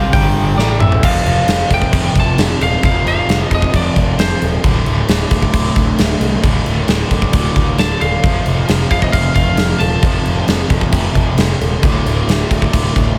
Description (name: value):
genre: hard rock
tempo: 133 BPM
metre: 4/4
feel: straight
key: unclear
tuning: A4 = 440 Hz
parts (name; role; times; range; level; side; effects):
- lightly driven lead guitar; melody; 0.0-4.5, 7.8-11.1 s; C5 to A5; -22 LUFS; equal; slapback echo
- overdriven electric guitar; riff; 0.0-13.2 s; D2 to C4; -24 LUFS; equal; harmonic tremolo, slapback echo
- overdriven semi-hollow guitar; riff; 0.0-13.2 s; D2 to C4; -24 LUFS; equal; phaser
- fuzz picked electric bass; bass; 0.0-13.1 s; D1 to C2; -21 LUFS; equal; overdrive
- huge arena drum kit; drums; 0.1-13.1 s; crash cymbal, hi-hat, kick drum, snare drum, toms; -18 LUFS; equal; none
room: light reverb, studio reverb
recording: none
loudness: -14 LUFS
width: mono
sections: 0.0-1.0 A section; 1.0-13.2 B section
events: lead electric guitar solo 0.0-1.0; drum fill 0.6-1.0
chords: 0.1 G5; 0.6 A5; 1.0 F5; 4.6 D5; 8.2 F; 11.8 D5